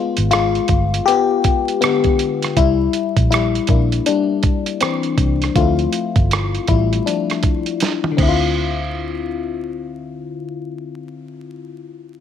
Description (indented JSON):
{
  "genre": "R&B, neo-soul",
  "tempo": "80 BPM",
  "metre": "4/4",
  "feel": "swing 62% on 16ths",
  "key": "D minor",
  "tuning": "A4 = 441 Hz",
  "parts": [
    { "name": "FM electric piano", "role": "accompaniment", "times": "0.0-12.2 s", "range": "D3 to G4", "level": "-19 LUFS", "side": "left 7 dB", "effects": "chorus" },
    { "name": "vintage muted fingered electric bass", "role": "bass", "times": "0.2-11.3 s", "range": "G1 to D2", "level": "-19 LUFS", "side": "equal", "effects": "none" },
    { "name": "dusty soul sampler-style drum kit", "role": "drums", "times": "0.2-8.4 s", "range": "crash cymbal, hi-hat, kick drum, rim click, snare drum, toms", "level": "-19 LUFS", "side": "right 2 dB", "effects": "none" }
  ],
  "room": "light reverb, digital ambience",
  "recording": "1960s-style stereo, vinyl crackle",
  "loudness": "-15 LUFS",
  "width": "side -9 dB against mid",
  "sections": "0.0-8.6 A section; 8.6-11.6 B section",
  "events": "FM electric piano solo 0.0-8.6; drum fill 7.8-8.6",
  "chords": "0.0 G7b9; 2.6 C9; 5.6 Dm9",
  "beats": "0.31 1.06 1.81 | 2.56 3.31 4.06 4.81 | 5.56 6.31 7.06 7.81 | 8.56 9.31 10.06 10.81"
}